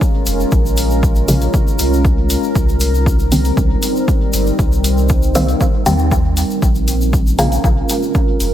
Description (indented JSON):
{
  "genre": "dub techno",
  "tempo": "118 BPM",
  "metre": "4/4",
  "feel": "straight",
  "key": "C phrygian",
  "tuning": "A4 = 440 Hz",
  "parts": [
    { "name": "deep dark ambient pad", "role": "sustained chords", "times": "0.0-8.5 s", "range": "G3 to Bb4", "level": "-19 LUFS", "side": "equal", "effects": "chorus, built-in reverb, sidechain pumping" },
    { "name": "electronic kick drum", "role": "drums", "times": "0.0-8.3 s", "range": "none", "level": "-16 LUFS", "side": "equal", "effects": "none" },
    { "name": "tube shaker", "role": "percussion", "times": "0.0-8.5 s", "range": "none", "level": "-28 LUFS", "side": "left 3 dB", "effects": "none" },
    { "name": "warm sub bass", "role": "bass", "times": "0.3-8.5 s", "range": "F1 to Eb2", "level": "-17 LUFS", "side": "equal", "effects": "sidechain pumping" },
    { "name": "electronic hi-hat", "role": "drums", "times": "0.3-8.5 s", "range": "none", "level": "-25 LUFS", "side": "left 1 dB", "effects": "none" },
    { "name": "filtered dub chord stab", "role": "stabs", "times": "1.3-7.5 s", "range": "Db3 to C4", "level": "-19 LUFS", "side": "equal", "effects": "chorus, phaser, sidechain pumping, dub echo" }
  ],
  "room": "light reverb",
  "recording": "none",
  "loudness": "-12 LUFS",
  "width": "side -11 dB against mid",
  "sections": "0.0-8.5 A section",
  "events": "filter sweep on synth stab 0.0-8.5",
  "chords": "0.0 Bbm7; 2.6 Cm7; 6.6 Bbm7"
}